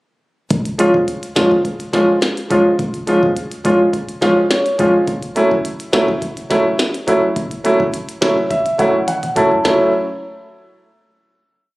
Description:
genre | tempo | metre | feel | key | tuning
dancehall | 105 BPM | 4/4 | straight | F# minor | A4 = 442 Hz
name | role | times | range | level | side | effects
clean 808-style bass | bass | 0.5-9.9 s | F#1 to D2 | -26 LUFS | equal | none
minimal click drum kit | drums | 0.5-9.8 s | hi-hat, kick drum, snare drum, toms | -22 LUFS | equal | none
warm baby grand piano | accompaniment | 0.8-9.9 s | E#3 to A5 | -14 LUFS | equal | none
room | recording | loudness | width
moderate lush hall reverb, RT60 1.7 s, digital ambience | recorded on a phone in the room, club reverb, compression | -14 LUFS | side -20 dB against mid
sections
0.5-9.6 verse; 9.6-11.8 final chord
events
grand piano fill 3.9-5.1, 7.9-9.6; drum fill 9.1-9.6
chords
0.5 C#; 5.1 F#m7

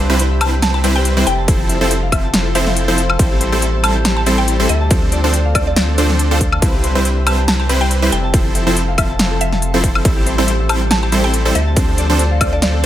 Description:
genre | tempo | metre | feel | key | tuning
future bass | 140 BPM | 4/4 | swing 55% on 16ths, half-time | unclear | A4 = 439 Hz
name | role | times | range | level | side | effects
shimmering ambient pad | sustained chords | 0.0-12.9 s | F3 to B5 | -27 LUFS | left 1 dB | none
Celtic harp | arpeggios | 0.0-12.9 s | G4 to A5 | -25 LUFS | left 5 dB | sidechain pumping, digital delay
supersaw stab | riff | 0.0-12.9 s | F3 to C5 | -18 LUFS | right 1 dB | sidechain pumping
saturated sub bass | bass | 0.0-12.9 s | F1 to D2 | -17 LUFS | equal | sidechain pumping
big-room dance drum kit | drums | 0.2-12.9 s | hi-hat, snare drum, woodblock | -18 LUFS | left 1 dB | overdrive
mallet-like synth pluck | melody | 0.4-12.9 s | D5 to A5 | -23 LUFS | equal | analog chorus, sidechain pumping, digital delay
electronic kick drum | drums | 1.5-12.5 s | none | -16 LUFS | equal | overdrive
room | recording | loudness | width
light reverb | none | -12 LUFS | side -12 dB against mid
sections
0.0-12.9 A section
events
kick drops out 2.8-3.2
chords
0.0 Cmaj7; 1.3 Fmaj7; 3.2 Am7; 4.7 Dm7; 6.6 Cmaj7; 8.1 Fmaj7; 10.1 Am7; 11.6 Dm7

